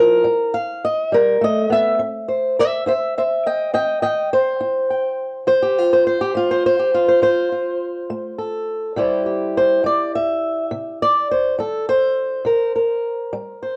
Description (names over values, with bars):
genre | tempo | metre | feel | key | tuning
acoustic country blues, solo or duo | 69 BPM (dotted quarters) | 12/8 | straight | C mixolydian | A4 = 440 Hz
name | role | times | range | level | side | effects
fingerpicked swing-style acoustic guitar | solo | 0.0-13.8 s | C3 to G5 | -19 LUFS | equal | none
room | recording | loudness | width
moderate small room reverb, RT60 0.5 s | worn, warbling old tape, cassette tape, warbly pitch drift | -19 LUFS | mono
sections
0.0-2.0 A section; 2.0-13.8 B section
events
steel-string acoustic guitar solo 0.0-2.0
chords
0.2 G; 2.0 C; 5.5 F; 9.0 C7